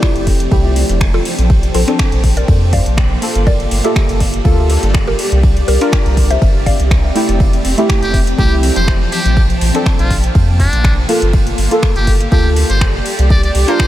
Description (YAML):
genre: deep house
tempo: 122 BPM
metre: 4/4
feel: swing 54% on 16ths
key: F major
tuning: A4 = 438 Hz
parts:
  - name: mallet-like synth pluck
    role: melody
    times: 0.0-6.9 s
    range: F4 to F5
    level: -24 LUFS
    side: left 2 dB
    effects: chorus, phaser, diffuse ambient delay
  - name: deep mellow chord stab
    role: stabs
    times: 0.0-13.9 s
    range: A3 to Bb4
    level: -19 LUFS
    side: equal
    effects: chorus, vintage 12-bit sampler grit, sidechain pumping, tape echo
  - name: deep house drum kit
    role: drums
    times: 0.0-13.9 s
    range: finger snaps, hi-hat, ride cymbal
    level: -23 LUFS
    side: equal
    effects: overdrive
  - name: electronic kick drum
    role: drums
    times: 0.0-13.9 s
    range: none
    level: -14 LUFS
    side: equal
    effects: overdrive
  - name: jazz brush drum kit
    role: drums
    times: 0.0-13.9 s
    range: hi-hat, ride cymbal, snare drum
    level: -32 LUFS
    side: right 4 dB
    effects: high-pass filter on cymbals, high-pass filter on hats, high-pass filter on snare, high-pass filter on room
  - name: granular cloud pad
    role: texture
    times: 0.0-13.9 s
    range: F3 to D6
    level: -22 LUFS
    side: equal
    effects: built-in reverb, sidechain pumping
  - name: round analog bass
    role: bass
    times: 0.2-13.6 s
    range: F1 to F2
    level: -14 LUFS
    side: equal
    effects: sidechain pumping
  - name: trumpet with metal mute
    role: melody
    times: 8.0-13.9 s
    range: D4 to D5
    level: -22 LUFS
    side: equal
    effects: analog delay
room: light reverb, small room ambience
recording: none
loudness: -10 LUFS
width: side -13 dB against mid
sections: 0.0-13.9 A section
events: none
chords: 0.0 Fmaj9; 1.5 Bbmaj9; 3.2 Gm9; 5.2 Fmaj9; 9.4 Bbmaj9; 11.1 Gm9; 13.1 C9sus4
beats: 0.03 0.52 1.01 | 1.50 1.99 2.48 2.98 | 3.47 3.96 4.45 4.94 | 5.43 5.93 6.42 6.91 | 7.40 7.89 8.38 8.88 | 9.37 9.86 10.35 10.84 | 11.34 11.83 12.32 12.81 | 13.30 13.79